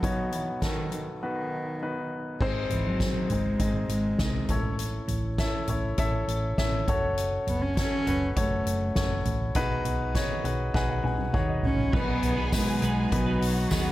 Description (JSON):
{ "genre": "piano-driven pop", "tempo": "101 BPM", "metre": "4/4", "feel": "straight", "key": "unclear", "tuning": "A4 = 440 Hz", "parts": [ { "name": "dark cello", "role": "melody", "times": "0.0-13.9 s", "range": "D#3 to C#4", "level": "-30 LUFS", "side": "equal", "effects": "none" }, { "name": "warm baby grand piano", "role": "accompaniment", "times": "0.0-13.9 s", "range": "B1 to B5", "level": "-30 LUFS", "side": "left 2 dB", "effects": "none" }, { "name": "soft-mallet drum kit", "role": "drums", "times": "0.0-13.9 s", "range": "crash cymbal, hi-hat, kick drum, snare drum, toms", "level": "-30 LUFS", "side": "equal", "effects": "none" }, { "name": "hollow-body short-scale fingered electric bass", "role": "bass", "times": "2.4-13.9 s", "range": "F#1 to D#2", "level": "-30 LUFS", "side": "equal", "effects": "none" }, { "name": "warm studio violin section", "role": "second line", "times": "11.9-13.9 s", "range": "F#4 to G#5", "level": "-36 LUFS", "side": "equal", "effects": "none" }, { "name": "twelve-string electric guitar", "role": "riff", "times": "11.9-13.9 s", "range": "B2 to B4", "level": "-34 LUFS", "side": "right 4 dB", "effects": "none" }, { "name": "tambourine", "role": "percussion", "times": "12.5-13.8 s", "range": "none", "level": "-40 LUFS", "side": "left 5 dB", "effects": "none" } ], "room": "light reverb, small room ambience", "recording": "none", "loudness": "-25 LUFS", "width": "side -16 dB against mid", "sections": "0.0-2.4 A section; 2.4-11.9 B section; 11.9-13.9 C section", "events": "break 1.2-2.4; grand piano fill 10.1-11.9; drum fill 10.7-11.9", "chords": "0.0 B; 2.4 G#; 4.5 A; 6.9 F#m; 9.6 B6; 11.9 B" }